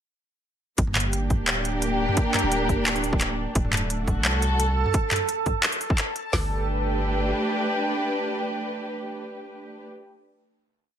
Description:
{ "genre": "half-time drum and bass", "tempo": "173 BPM", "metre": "4/4", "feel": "half-time", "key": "G harmonic minor", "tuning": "A4 = 441 Hz", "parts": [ { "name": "warm studio string section", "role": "sustained chords", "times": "0.8-9.9 s", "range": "A3 to B4", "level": "-26 LUFS", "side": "equal", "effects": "vintage 12-bit sampler grit, sidechain pumping" }, { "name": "long sustained 808-style bass", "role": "bass", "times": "0.8-7.3 s", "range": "D1 to C2", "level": "-27 LUFS", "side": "equal", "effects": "none" }, { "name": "organic electronic drum kit", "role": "drums", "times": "0.8-6.2 s", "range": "handclaps, hi-hat, toms", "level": "-25 LUFS", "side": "equal", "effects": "none" }, { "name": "trap drum kit", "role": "drums", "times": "0.8-6.4 s", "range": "hi-hat, kick drum, snare drum, toms", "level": "-24 LUFS", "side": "equal", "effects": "none" } ], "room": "moderate digital room reverb, RT60 1.1 s, digital ambience", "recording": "lossy compression artefacts", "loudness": "-22 LUFS", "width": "side -9 dB against mid", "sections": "0.8-6.3 drop; 6.3-9.1 final chord", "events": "drop 0.8-6.3", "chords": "0.8 Gm; 3.6 D; 6.3 G", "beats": "| 0.78 1.13 1.48 1.82 | 2.17 2.52 2.86 3.21 | 3.56 3.90 4.25 4.60 | 4.95 5.29 5.64 5.99 | 6.33 6.68 7.03 7.37 | 7.72 8.07 8.41 8.76" }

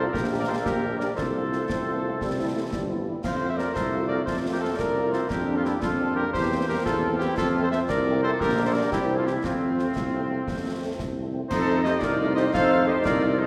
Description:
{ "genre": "military-style march for wind band", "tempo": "116 BPM (dotted quarters)", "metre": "6/8", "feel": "straight", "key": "F major", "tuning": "A4 = 440 Hz", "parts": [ { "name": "mellow cornet", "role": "melody", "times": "0.0-13.5 s", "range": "F4 to F5", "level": "-32 LUFS", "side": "equal", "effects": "none" }, { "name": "mellow woodwind section", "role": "second line", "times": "0.0-13.5 s", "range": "C4 to C5", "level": "-32 LUFS", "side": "equal", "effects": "none" }, { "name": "dark French horn section", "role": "accompaniment", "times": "0.0-13.5 s", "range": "D3 to G4", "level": "-36 LUFS", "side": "equal", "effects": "none" }, { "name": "bright trombone section", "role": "sustained chords", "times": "0.0-13.5 s", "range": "E3 to Eb4", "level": "-35 LUFS", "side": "equal", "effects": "none" }, { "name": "warm tuba", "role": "bass", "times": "0.0-13.5 s", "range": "G1 to F2", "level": "-30 LUFS", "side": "equal", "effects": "none" }, { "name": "concert snare drum, concert bass drum and clash cymbals", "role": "drums", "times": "0.1-13.2 s", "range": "none", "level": "-36 LUFS", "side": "equal", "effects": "none" }, { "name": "warm euphonium", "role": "second line", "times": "1.7-3.2 s", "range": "E3 to C4", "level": "-38 LUFS", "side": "equal", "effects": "none" }, { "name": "small flute group", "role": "second line", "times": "11.5-13.5 s", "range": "A4 to C5", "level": "-29 LUFS", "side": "equal", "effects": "none" } ], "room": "wet concert hall reverb, RT60 2.1 s", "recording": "heard from further back in the room", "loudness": "-25 LUFS", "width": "mono", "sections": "0.0-11.5 A section; 11.5-13.5 B section", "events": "none", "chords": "0.1 Gm/Bb; 1.2 F/C; 2.2 C; 3.2 F; 5.3 Gm7/F; 6.3 C7/E; 7.4 F; 8.4 Gm/Bb; 8.9 C; 9.4 F; 11.5 F7", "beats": "| 0.14 0.66 | 1.18 1.69 | 2.21 2.73 | 3.24 3.76 | 4.28 4.79 | 5.31 5.83 | 6.34 6.86 | 7.38 7.89 | 8.41 8.93 | 9.44 9.96 | 10.47 10.99 | 11.51 12.02 | 12.54 13.05" }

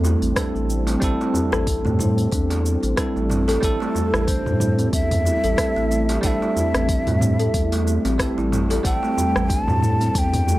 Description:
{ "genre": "organic downtempo", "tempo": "92 BPM", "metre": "4/4", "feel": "swing 56% on 16ths", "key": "A minor pentatonic", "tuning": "A4 = 441 Hz", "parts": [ { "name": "bell-like tine electric piano", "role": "accompaniment", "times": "0.0-10.6 s", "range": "G3 to A4", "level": "-27 LUFS", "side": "right 3 dB", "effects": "medium stereo tremolo, sidechain pumping, tape echo" }, { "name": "warm analog pad", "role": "sustained chords", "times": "0.0-10.6 s", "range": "G3 to E4", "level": "-29 LUFS", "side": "equal", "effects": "chorus, sidechain pumping" }, { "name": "kalimba", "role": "arpeggios", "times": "0.0-10.1 s", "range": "A3 to A4", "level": "-25 LUFS", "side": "equal", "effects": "tape echo" }, { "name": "round analog bass", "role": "bass", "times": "0.0-10.6 s", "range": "A1 to A2", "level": "-23 LUFS", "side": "equal", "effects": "tube saturation, sidechain pumping" }, { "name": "deep house drum kit", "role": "drums", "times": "0.0-10.6 s", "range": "cabasa, hi-hat, rim click, toms", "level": "-26 LUFS", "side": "equal", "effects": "none" }, { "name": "darbuka", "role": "percussion", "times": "0.0-10.6 s", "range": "none", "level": "-29 LUFS", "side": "right 1 dB", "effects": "none" }, { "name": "electronic kick drum", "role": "drums", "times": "0.4-10.3 s", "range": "none", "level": "-25 LUFS", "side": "equal", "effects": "none" }, { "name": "breathy mellow ney", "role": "melody", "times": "3.6-10.6 s", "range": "A4 to A5", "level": "-26 LUFS", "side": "equal", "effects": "tape echo" } ], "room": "digital ambience", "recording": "dry, gritty hardware recording", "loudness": "-18 LUFS", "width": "side -16 dB against mid", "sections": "0.0-10.6 A section", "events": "none", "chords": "0.0 Am7", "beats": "0.36 | 1.02 1.67 2.32 2.97 | 3.62 4.28 4.93 5.58 | 6.23 6.89 7.54 8.19 | 8.84 9.49 10.15" }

